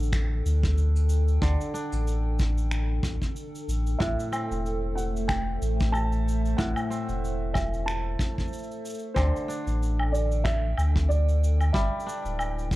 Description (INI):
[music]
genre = folktronica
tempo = 93 BPM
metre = 4/4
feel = swing 56% on 16ths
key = unclear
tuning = A4 = 444 Hz
[part]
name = warbly tape-like pad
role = sustained chords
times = 0.0-12.8 s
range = D3 to G5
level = -36 LUFS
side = equal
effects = chorus, built-in reverb, phaser, vintage 12-bit sampler grit
[part]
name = kora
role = arpeggios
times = 0.0-12.8 s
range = A2 to D4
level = -35 LUFS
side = equal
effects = digital delay
[part]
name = warm sub bass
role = bass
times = 0.0-12.8 s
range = D1 to D2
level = -25 LUFS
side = equal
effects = none
[part]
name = cabasa, finger snaps and woodblock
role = drums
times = 0.0-12.8 s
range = none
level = -37 LUFS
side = equal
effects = none
[part]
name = kick drum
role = drums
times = 0.1-12.8 s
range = none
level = -28 LUFS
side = equal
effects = none
[part]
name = felt-muted upright piano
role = melody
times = 4.0-12.8 s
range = C5 to A5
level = -34 LUFS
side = right 2 dB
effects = digital delay
[sound]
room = little or no reverb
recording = dark, warm production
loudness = -24 LUFS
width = side -17 dB against mid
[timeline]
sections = 0.0-12.8 A section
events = none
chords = 0.0 Dsus4; 4.0 Am; 9.2 Dsus4; 11.7 G6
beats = 0.13 0.78 | 1.42 2.07 2.71 3.36 | 4.00 4.65 5.29 5.94 | 6.58 7.23 7.87 8.52 | 9.16 9.81 10.45 11.10 | 11.74 12.39